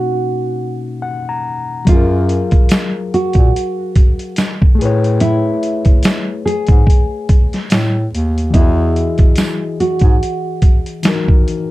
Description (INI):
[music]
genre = lo-fi hip hop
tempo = 72 BPM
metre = 4/4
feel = swing 56% on 16ths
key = unclear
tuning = A4 = 440 Hz
[part]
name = nylon-string guitar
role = melody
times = 0.0-11.7 s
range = E4 to G#4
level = -19 LUFS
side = right 1 dB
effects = low-pass filter, analog delay
[part]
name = overdriven reed electric piano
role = accompaniment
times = 0.0-11.7 s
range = B2 to A#5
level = -22 LUFS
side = left 4 dB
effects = cassette tape, low-pass filter
[part]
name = mellow bass clarinet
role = bass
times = 1.9-10.2 s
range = D#2 to A#2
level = -16 LUFS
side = equal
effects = none
[part]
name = trip hop sampler-style drum kit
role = drums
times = 1.9-11.7 s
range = hi-hat, kick drum, snare drum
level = -11 LUFS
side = equal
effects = none
[part]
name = tambourine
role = percussion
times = 2.7-11.3 s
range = none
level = -32 LUFS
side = right 9 dB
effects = none
[sound]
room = little or no reverb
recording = dark, warm production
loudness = -12 LUFS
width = side -17 dB against mid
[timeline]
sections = 0.0-11.7 A section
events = reed electric piano fill 0.6-1.9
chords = 0.0 Bmaj9; 1.9 F#maj9; 4.8 Amaj9; 8.5 Emaj9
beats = 0.21 1.04 | 1.87 2.71 3.54 4.37 | 5.21 6.04 6.87 7.71 | 8.54 9.37 10.21 11.04